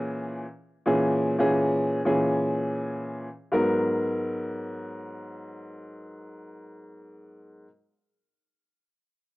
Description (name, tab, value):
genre	hip hop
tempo	free time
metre	none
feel	none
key	G# minor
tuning	A4 = 439 Hz
part	dark upright piano	accompaniment	0.0-7.7 s	G#2 to A#4	-25 LUFS	equal	high-pass filter, low-pass filter
room	small room ambience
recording	dry, gritty hardware recording, cassette tape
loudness	-24 LUFS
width	side -20 dB against mid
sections	0.0-3.5 A section; 3.5-6.2 B section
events	none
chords	0.0 A#m7b5; 3.5 G#m9